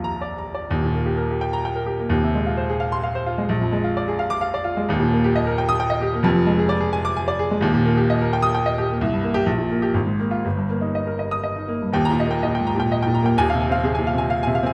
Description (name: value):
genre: classical, virtuoso piano study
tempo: 117-134 BPM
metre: 3/4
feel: rubato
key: Eb major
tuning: A4 = 440 Hz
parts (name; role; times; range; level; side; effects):
- clear baby grand piano; solo; 0.0-14.7 s; Eb1 to Eb6; -21 LUFS; equal; none
room: moderate recital hall reverb, RT60 1.6 s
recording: close, detailed microphones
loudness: -21 LUFS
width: mono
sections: 0.7-12.0 A section; 12.0-14.7 B section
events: none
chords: 0.0 Bb; 0.7 Eb; 2.1 Fm/Eb; 3.5 Bb7; 4.9 Eb; 6.2 Ddim/F; 7.6 Eb; 9.0 C5; 9.5 Gm/Bb; 9.9 Bb5/Ab; 10.4 Eb/G; 12.0 Eb; 13.4 Fm/Eb